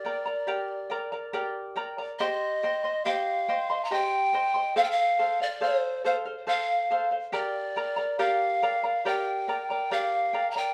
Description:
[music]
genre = andean folk, Andean ensemble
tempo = 70 BPM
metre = 3/4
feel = straight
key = G minor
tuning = A4 = 438 Hz
[part]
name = mellow hollow pan flute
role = melody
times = 0.0-10.7 s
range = C5 to Bb5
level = -29 LUFS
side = equal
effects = plate reverb, tape echo
[part]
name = charango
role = accompaniment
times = 0.0-10.7 s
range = G4 to C6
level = -32 LUFS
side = equal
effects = none
[sound]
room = moderate studio reverb, RT60 0.6 s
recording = none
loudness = -28 LUFS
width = mono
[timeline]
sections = 0.0-2.2 A section; 2.2-10.7 B section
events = none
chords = 0.0 Gm; 2.2 Cm; 4.8 F; 7.3 Gm

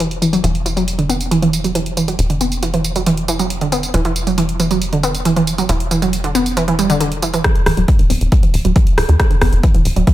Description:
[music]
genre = driving peak-time techno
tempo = 137 BPM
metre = 4/4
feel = straight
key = unclear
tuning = A4 = 440 Hz
[part]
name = analog pluck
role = riff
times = 0.0-10.1 s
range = D3 to B3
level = -17 LUFS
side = right 1 dB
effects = chorus, sidechain pumping, digital delay
[part]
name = tight sequencer bass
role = bass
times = 0.0-10.0 s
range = E1 to E2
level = -20 LUFS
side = equal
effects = sidechain pumping
[part]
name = techno drum kit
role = drums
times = 0.0-10.1 s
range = hi-hat, rim click, tambourine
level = -22 LUFS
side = right 1 dB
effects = none
[part]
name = electronic kick drum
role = drums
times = 7.4-10.1 s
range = none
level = -13 LUFS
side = equal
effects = none
[sound]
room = moderate stone room reverb, RT60 1.1 s, digital ambience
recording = none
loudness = -13 LUFS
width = side -14 dB against mid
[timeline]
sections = 0.0-7.4 A section; 7.4-10.1 B section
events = filter sweep on synth arpeggio sound 0.0-7.4; build-up 7.4-10.1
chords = 0.0 N.C.; 7.4 E5

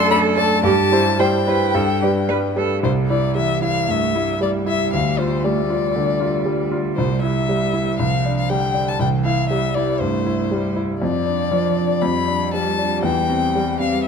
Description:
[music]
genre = quick classical-period movement for piano trio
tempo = 118 BPM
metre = 4/4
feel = rubato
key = C major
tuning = A4 = 439 Hz
[part]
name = rich violin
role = melody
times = 0.0-14.1 s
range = C5 to B5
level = -22 LUFS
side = left 8 dB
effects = none
[part]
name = rich cello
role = second line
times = 0.0-14.1 s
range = D3 to C5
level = -24 LUFS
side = right 10 dB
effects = none
[part]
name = clear concert grand piano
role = accompaniment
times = 0.0-14.1 s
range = C2 to D5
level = -19 LUFS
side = equal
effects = none
[sound]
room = moderate concert hall reverb, RT60 2.3 s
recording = close, detailed microphones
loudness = -17 LUFS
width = side -6 dB against mid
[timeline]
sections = 0.0-2.8 A section; 2.8-14.1 B section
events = none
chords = 0.0 D/F#; 0.6 C/G; 1.7 G; 2.8 C; 4.9 G5/D; 7.0 C; 8.0 G5/C; 9.0 C; 11.0 Dm/F; 12.0 G7/F; 13.0 C/E

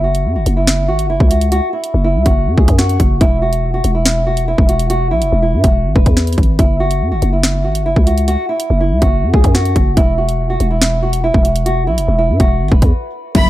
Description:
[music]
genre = hip hop, drill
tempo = 142 BPM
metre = 4/4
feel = half-time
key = unclear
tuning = A4 = 440 Hz
[part]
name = nylon-string guitar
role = melody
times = 0.0-13.5 s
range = E4 to B4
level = -18 LUFS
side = right 1 dB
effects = tape echo
[part]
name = growling 808-style bass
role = bass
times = 0.0-13.5 s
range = E1 to G#2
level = -15 LUFS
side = equal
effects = none
[part]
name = drill drum kit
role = drums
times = 0.1-13.4 s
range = crash cymbal, hi-hat, kick drum, snare drum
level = -13 LUFS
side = equal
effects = none
[part]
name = warm studio violin section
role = second line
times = 13.3-13.5 s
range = B5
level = -15 LUFS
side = left 2 dB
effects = none
[part]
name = felt-muted upright piano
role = accompaniment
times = 13.3-13.5 s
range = F#2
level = -14 LUFS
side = left 4 dB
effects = none
[sound]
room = small room reverb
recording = dark, warm production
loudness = -11 LUFS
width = side -15 dB against mid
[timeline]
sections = 0.0-13.3 A section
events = break 12.9-13.3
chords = 0.0 F#5; 3.2 E5; 6.6 F#5; 10.0 E5

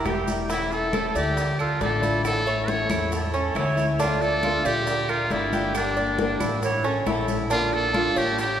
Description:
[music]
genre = latin, Cuban son and guajira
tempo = 137 BPM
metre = 4/4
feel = straight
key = unclear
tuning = A4 = 437 Hz
[part]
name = breathy bright jazz flute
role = second line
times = 0.0-0.4, 3.1-3.9, 6.6-7.4 s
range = G4 to C#5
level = -33 LUFS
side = right 3 dB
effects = none
[part]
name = picked old ladder-braced acoustic guitar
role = accompaniment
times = 0.0-8.4 s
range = D3 to G4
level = -29 LUFS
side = left 4 dB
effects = none
[part]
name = Cuban tres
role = arpeggios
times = 0.0-8.6 s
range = C#4 to D5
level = -28 LUFS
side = right 3 dB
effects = none
[part]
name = upright bass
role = bass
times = 0.1-8.6 s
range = E1 to E2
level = -29 LUFS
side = equal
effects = none
[part]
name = bongos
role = percussion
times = 0.1-8.6 s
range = none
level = -34 LUFS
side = left 4 dB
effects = none
[part]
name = claves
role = percussion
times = 0.1-8.2 s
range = none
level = -41 LUFS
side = right 6 dB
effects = none
[part]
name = congas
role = percussion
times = 0.1-8.6 s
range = none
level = -33 LUFS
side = left 2 dB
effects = none
[part]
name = maracas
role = percussion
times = 0.1-8.6 s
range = none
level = -42 LUFS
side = right 4 dB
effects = none
[part]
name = trumpet with metal mute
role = melody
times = 0.5-8.6 s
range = D4 to C#5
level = -26 LUFS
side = equal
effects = none
[sound]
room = wet church reverb, RT60 3.5 s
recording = recorded in a church or concert hall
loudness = -21 LUFS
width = side -9 dB against mid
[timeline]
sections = 0.0-8.6 A section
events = none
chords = 0.5 A/E; 1.4 Dm; 2.2 A; 4.0 Dm; 4.9 Bb; 5.7 Gm; 6.6 A; 7.5 Bb

